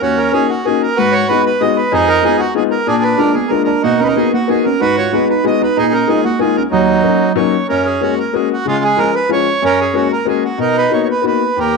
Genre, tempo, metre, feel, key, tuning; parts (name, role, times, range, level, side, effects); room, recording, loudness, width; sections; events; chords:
musette waltz; 188 BPM; 3/4; rubato; Eb minor, F# major from 7.7 s; A4 = 440 Hz
accordion; melody; 0.0-11.8 s; Gb3 to Eb5; -15 LUFS; right 5 dB
clear upright piano; accompaniment; 0.0-11.8 s; Eb2 to Gb4; -16 LUFS; left 13 dB
tine electric piano; second line; 3.2-7.3 s; Gb3 to Gb4; -17 LUFS; right 14 dB
wet spring reverb, RT60 1.2 s, studio ambience; 1960s-style stereo with parts hard left and right, nothing above 11.0 kHz; -12 LUFS; side -3 dB against mid
0.0-7.7 A section; 7.7-11.8 B section
0.0 Ebm7; 1.0 Abm7; 1.9 Fm7b5; 2.9 Bb7; 3.8 Bmaj7; 4.8 Abm7; 5.8 Bb7sus4; 6.7 Ebm7; 7.7 F#add9; 8.7 C#; 9.6 F#add9; 10.6 Bmaj7